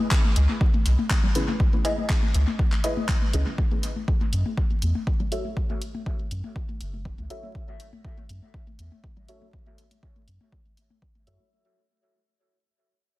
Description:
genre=dub techno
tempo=121 BPM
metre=4/4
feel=straight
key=unclear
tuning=A4 = 443 Hz
part: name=deep house drum kit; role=drums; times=0.1-11.4 s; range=handclaps, hi-hat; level=-32 LUFS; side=equal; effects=studio reverb, dub echo
part: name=electronic kick drum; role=drums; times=0.1-11.1 s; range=none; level=-24 LUFS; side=equal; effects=studio reverb
part: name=electronic toms and congas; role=percussion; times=0.2-11.5 s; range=none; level=-32 LUFS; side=left 4 dB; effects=sidechain pumping on toms, studio reverb, sidechain pumping on perc, dub echo
part: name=soft dub sub bass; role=bass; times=0.4-11.4 s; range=F#1 to F#2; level=-23 LUFS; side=equal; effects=tube saturation, sidechain pumping
part: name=deep mellow chord stab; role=stabs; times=1.4-11.4 s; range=C#4 to E5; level=-35 LUFS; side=equal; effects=chorus, phaser, dub echo
part: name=filtered dub chord stab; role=riff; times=1.8-3.0 s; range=E4 to D#5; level=-32 LUFS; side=equal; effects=phaser, lush chorus, cassette tape, sidechain pumping, dub echo
room=digital ambience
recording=dense, heavily limited modern master, vinyl crackle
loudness=-22 LUFS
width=side -18 dB against mid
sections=0.0-11.5 A section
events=fade-out 0.0-11.5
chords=0.0 C#m7; 3.6 F#m7

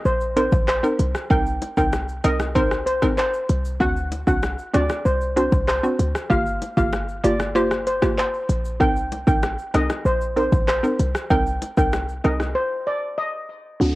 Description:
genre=dancehall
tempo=96 BPM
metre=4/4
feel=straight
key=unclear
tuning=A4 = 436 Hz
part: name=steel pan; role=melody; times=0.1-13.9 s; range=C5 to G5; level=-24 LUFS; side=equal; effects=low-pass filter, cassette tape
part: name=short 808-style bass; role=bass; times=0.1-14.0 s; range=G1 to D2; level=-24 LUFS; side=equal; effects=none
part: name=afro-pop drum kit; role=drums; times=0.1-12.5 s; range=handclaps, hi-hat, kick drum, rim click, shaker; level=-24 LUFS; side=equal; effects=cassette tape
part: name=hollow square pluck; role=accompaniment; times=0.4-14.0 s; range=Bb3 to Bb4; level=-23 LUFS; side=right 1 dB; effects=chorus, low-pass filter, cassette tape
part: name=bongos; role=percussion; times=0.5-12.5 s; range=none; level=-33 LUFS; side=left 4 dB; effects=none
part: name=lush unison pad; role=sustained chords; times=13.8-14.0 s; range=D3 to F#4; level=-32 LUFS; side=equal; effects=chorus, low-pass filter, cassette tape
part: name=downlifter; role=sound effects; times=13.8-14.0 s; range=none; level=-32 LUFS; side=equal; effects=none
room=digital ambience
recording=home recording on cassette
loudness=-19 LUFS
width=side -18 dB against mid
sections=0.0-13.8 A section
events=break 12.6-13.8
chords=0.0 Cm7; 3.8 D7; 6.3 Gm7; 8.8 Cm7

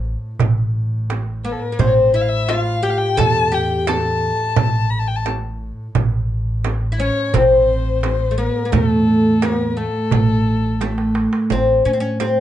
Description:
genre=Arabic maqam ensemble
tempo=86 BPM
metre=4/4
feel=straight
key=A maqam saba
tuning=A4 = 440 Hz
part: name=upright bass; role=bass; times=0.0-12.4 s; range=A1 to A2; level=-22 LUFS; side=equal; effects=none
part: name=warm double bass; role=drone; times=0.0-11.6 s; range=A2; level=-27 LUFS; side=right 1 dB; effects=none
part: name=darbuka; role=percussion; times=0.1-11.5 s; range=none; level=-23 LUFS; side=right 4 dB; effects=none
part: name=frame drum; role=percussion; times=0.4-12.4 s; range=none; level=-24 LUFS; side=right 8 dB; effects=none
part: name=oud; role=melody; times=1.4-12.4 s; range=A3 to A4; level=-18 LUFS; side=equal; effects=none
part: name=dark violin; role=second line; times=1.4-11.2 s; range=A4 to B5-50c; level=-22 LUFS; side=left 6 dB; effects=none
room=moderate studio reverb, RT60 0.5 s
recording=nothing above 10.4 kHz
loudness=-15 LUFS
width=side -12 dB against mid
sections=0.0-11.5 A section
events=drum fill 10.8-11.5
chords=none

